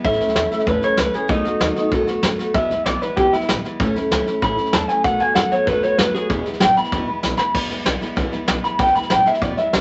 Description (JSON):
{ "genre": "rockabilly", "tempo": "192 BPM", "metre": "4/4", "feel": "straight", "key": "E major", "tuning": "A4 = 435 Hz", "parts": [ { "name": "picked steel-string acoustic guitar", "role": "accompaniment", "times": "0.0-9.8 s", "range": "E2 to F#4", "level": "-26 LUFS", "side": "equal", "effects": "none" }, { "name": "upright bass", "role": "bass", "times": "0.0-9.8 s", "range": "E1 to F#2", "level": "-32 LUFS", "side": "equal", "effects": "none" }, { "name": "soft brush drum kit", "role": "drums", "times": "0.0-9.8 s", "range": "crash cymbal, hi-hat, kick drum, snare drum", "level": "-24 LUFS", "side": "equal", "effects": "none" }, { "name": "electric guitar through a small old amp", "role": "melody", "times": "0.1-9.8 s", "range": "D#4 to B5", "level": "-21 LUFS", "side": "equal", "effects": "spring reverb" } ], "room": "moderate small room reverb, RT60 0.6 s", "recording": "nothing above 8.0 kHz", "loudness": "-19 LUFS", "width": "mono", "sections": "0.0-7.5 A section; 7.5-9.8 A section", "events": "clean electric guitar solo 0.0-9.8; drum fill 6.9-7.5", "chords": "0.0 A; 1.3 B7; 2.5 E; 3.8 A; 5.0 B7; 6.3 E", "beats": "| 0.04 0.36 0.67 0.98 | 1.29 1.61 1.92 2.23 | 2.55 2.86 3.17 3.48 | 3.80 4.11 4.42 4.74 | 5.05 5.36 5.67 5.99 | 6.30 6.61 6.92 7.24 | 7.55 7.86 8.17 8.49 | 8.80 9.11 9.43 9.74" }